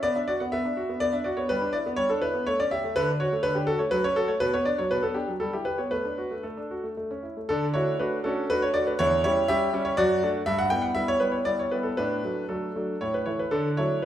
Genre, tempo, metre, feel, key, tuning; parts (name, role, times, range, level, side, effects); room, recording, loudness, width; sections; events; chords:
classical-period piano sonatina; 113-126 BPM; 3/4; rubato; D major; A4 = 442 Hz
clear concert grand piano; solo; 0.0-14.1 s; E2 to G5; -24 LUFS; equal
wet recital hall reverb, RT60 1.3 s; minimal, uncompressed stereo recording; -24 LUFS; side -11 dB against mid
0.0-7.5 A section; 7.5-14.1 B section
0.0 Bm; 1.5 Em7/G; 2.5 A7; 3.0 D; 3.9 F#m; 4.4 Bm; 5.4 Em/G; 5.9 D/A; 7.0 A; 7.5 D; 9.0 C#dim/E; 10.0 D/F#; 10.5 Em/G; 12.0 D/A; 13.0 A5; 13.5 D